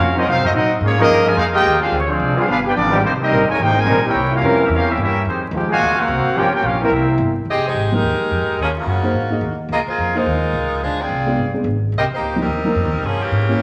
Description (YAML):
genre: jazz, big band swing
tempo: 216 BPM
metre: 4/4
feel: swing 62% on 8ths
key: F minor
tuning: A4 = 440 Hz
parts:
  - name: warm trumpet section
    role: melody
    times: 0.0-7.3 s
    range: Ab3 to Ab5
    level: -20 LUFS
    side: equal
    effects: none
  - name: brilliant trombone section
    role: second line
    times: 0.0-7.3 s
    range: Bb2 to G4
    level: -24 LUFS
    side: equal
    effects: none
  - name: upright bass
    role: bass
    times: 0.0-13.6 s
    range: Eb1 to C3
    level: -24 LUFS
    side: equal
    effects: none
  - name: bright trombone section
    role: sustained chords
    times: 0.2-6.9 s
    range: E3 to C5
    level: -22 LUFS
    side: equal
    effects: none
  - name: edgy saxophone section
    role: melody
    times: 7.5-13.6 s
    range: Db3 to Eb5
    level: -22 LUFS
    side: equal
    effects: none
  - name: dark upright piano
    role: accompaniment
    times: 7.9-13.6 s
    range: F3 to Eb5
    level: -25 LUFS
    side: equal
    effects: none
room: wet large studio reverb, RT60 1.3 s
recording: vinyl crackle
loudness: -18 LUFS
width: mono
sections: 0.0-7.5 A section; 7.5-13.6 B section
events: none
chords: 0.3 Ab13; 0.8 Db69; 1.9 Dm7b5; 2.5 G7b9; 3.0 Cm7; 4.1 C7b9; 5.3 Fm9; 5.8 D7alt; 6.4 Gm7b5; 6.9 C7; 7.5 Fm9; 8.6 Ebm9; 9.1 Absus2; 9.7 Db69; 10.8 Dm7b5; 11.4 G7b9; 11.9 Cm7; 13.0 Gdim7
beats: 0.26 0.54 | 0.81 1.09 1.37 1.65 | 1.92 2.20 2.48 2.75 | 3.03 3.31 3.59 3.86 | 4.14 4.42 4.70 4.97 | 5.25 5.53 5.81 6.08 | 6.36 6.64 6.92 7.20 | 7.47 7.75 8.03 8.31 | 8.59 8.86 9.14 9.42 | 9.70 9.98 10.26 10.53 | 10.81 11.09 11.37 11.64 | 11.92 12.20 12.48 12.76 | 13.03 13.31 13.59